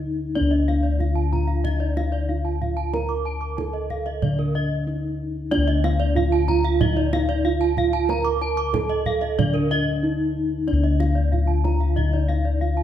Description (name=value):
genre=Balinese gamelan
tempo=93 BPM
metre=4/4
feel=straight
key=D pelog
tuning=A4 = 435 Hz
part: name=gamelan-type bronze metallophone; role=melody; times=0.0-12.8 s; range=D4 to Bb4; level=-26 LUFS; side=right 3 dB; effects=none
part: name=gamelan-type bossed gongs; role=bass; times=0.0-12.8 s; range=D2 to Bb4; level=-22 LUFS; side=left 2 dB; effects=none
part: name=gamelan-type bronze metallophone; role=arpeggios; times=0.4-12.8 s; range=D5 to Bb5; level=-30 LUFS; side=left 2 dB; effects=none
part: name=kendang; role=percussion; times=0.4-12.4 s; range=none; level=-29 LUFS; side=right 5 dB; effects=none
part: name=gamelan-type bronze metallophone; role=arpeggios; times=0.5-12.8 s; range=Bb4 to D6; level=-32 LUFS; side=right 5 dB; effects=none
room=light reverb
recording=dark, warm production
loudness=-20 LUFS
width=side -10 dB against mid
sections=0.0-12.8 A section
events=break 0.0-0.4; drum fill 4.7-5.5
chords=none